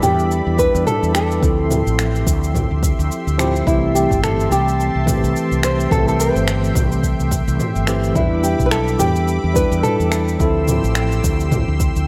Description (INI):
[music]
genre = sunset chillout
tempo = 107 BPM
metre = 4/4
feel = swing 57% on 16ths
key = A minor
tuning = A4 = 440 Hz
[part]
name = nylon-string guitar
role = melody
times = 0.0-11.8 s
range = E4 to C5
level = -23 LUFS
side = equal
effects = delay
[part]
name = tine electric piano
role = accompaniment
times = 0.0-12.1 s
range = E3 to B4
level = -24 LUFS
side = equal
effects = medium tremolo, tape echo
[part]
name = lush unison pad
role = sustained chords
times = 0.0-12.1 s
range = G4 to E6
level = -30 LUFS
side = equal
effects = chorus
[part]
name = mellow fretless electric bass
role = bass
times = 0.0-12.1 s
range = G1 to E2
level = -22 LUFS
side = equal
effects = none
[part]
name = deep house drum kit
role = drums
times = 0.0-12.1 s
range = cabasa, finger snaps, toms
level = -26 LUFS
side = equal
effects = none
[part]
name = electronic kick drum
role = drums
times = 0.6-11.9 s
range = none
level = -23 LUFS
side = equal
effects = none
[sound]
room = light reverb, digital ambience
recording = none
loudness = -17 LUFS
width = mono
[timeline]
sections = 0.0-12.1 A section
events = none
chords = 0.0 Em7; 1.4 Dm11; 3.7 Am7; 8.2 Em7; 10.4 Dm11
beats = 0.31 0.87 | 1.43 1.99 2.55 3.11 | 3.67 4.23 4.79 5.35 | 5.91 6.47 7.04 7.60 | 8.16 8.72 9.28 9.84 | 10.40 10.96 11.52